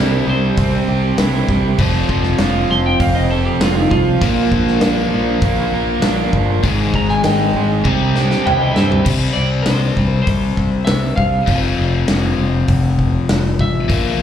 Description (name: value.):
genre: classic rock.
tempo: 99 BPM.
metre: 4/4.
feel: straight.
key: C mixolydian.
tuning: A4 = 441 Hz.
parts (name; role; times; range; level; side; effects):
clean lap steel guitar; melody; 0.0-14.2 s; Eb4 to C6; -22 LUFS; right 1 dB; slapback echo, tape echo.
biting overdriven guitar; riff; 0.0-14.2 s; F2 to C4; -20 LUFS; left 7 dB; spring reverb, slapback echo.
crunchy overdriven guitar; riff; 0.0-9.1 s; Ab2 to Bb4; -19 LUFS; right 9 dB; slapback echo.
growling fingered electric bass; bass; 0.0-14.2 s; F1 to G2; -19 LUFS; equal; overdrive.
big rock drum kit; drums; 0.6-14.0 s; crash cymbal, hi-hat, kick drum, snare drum, toms; -19 LUFS; equal; none.
room: studio reverb.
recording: live gig heard through the venue's PA, club ambience.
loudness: -13 LUFS.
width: side -9 dB against mid.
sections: 0.0-9.1 A section; 9.1-14.2 B section.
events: electric slide guitar solo 0.0-9.1; drum fill 7.9-9.1.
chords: 0.0 C; 1.8 F; 4.2 Bb; 6.6 Ab5; 7.9 C; 9.1 C5; 11.5 F5.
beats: 0.58 1.19 | 1.79 2.40 3.01 3.61 | 4.22 4.83 5.43 6.04 | 6.64 7.25 7.85 8.46 | 9.06 9.67 10.27 10.88 | 11.48 12.09 12.69 13.30 | 13.90.